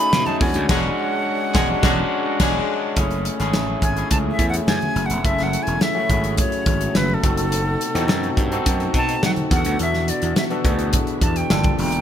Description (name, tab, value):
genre	polished 1980s jazz-funk pop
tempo	105 BPM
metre	4/4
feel	straight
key	F# minor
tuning	A4 = 442 Hz
part	breathy silver concert flute	melody	0.0-12.0 s	A4 to B5	-25 LUFS	equal	none
part	overdriven tine electric piano	accompaniment	0.0-12.0 s	G#3 to A4	-24 LUFS	left 2 dB	wide subtle chorus
part	string machine, full ensemble	sustained chords	0.0-12.0 s	B2 to F#5	-31 LUFS	equal	none
part	gritty slap bass	bass	0.1-12.0 s	E1 to F#3	-24 LUFS	equal	overdrive
part	modern studio drum kit	drums	0.1-12.0 s	crash cymbal, hi-hat, kick drum, snare drum	-22 LUFS	equal	gated reverb
part	congas	percussion	0.1-11.8 s	none	-33 LUFS	right 2 dB	none
part	warm horn section	second line	0.7-2.5 s	D3 to G#4	-30 LUFS	left 1 dB	none
room	light reverb, small room ambience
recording	bright 1980s-style digital production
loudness	-18 LUFS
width	side -9 dB against mid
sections	0.0-3.0 A section; 3.0-12.0 B section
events	band accent 0.7-3.0; flute solo 3.0-12.0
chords	0.4 E13; 3.0 F#m9; 7.2 B7b9/F#; 9.5 E9sus4; 11.5 Gm9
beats	0.12 | 0.69 1.26 1.83 2.40 | 2.97 3.54 4.11 4.68 | 5.25 5.82 6.39 6.96 | 7.53 8.09 8.66 9.23 | 9.80 10.37 10.94 11.50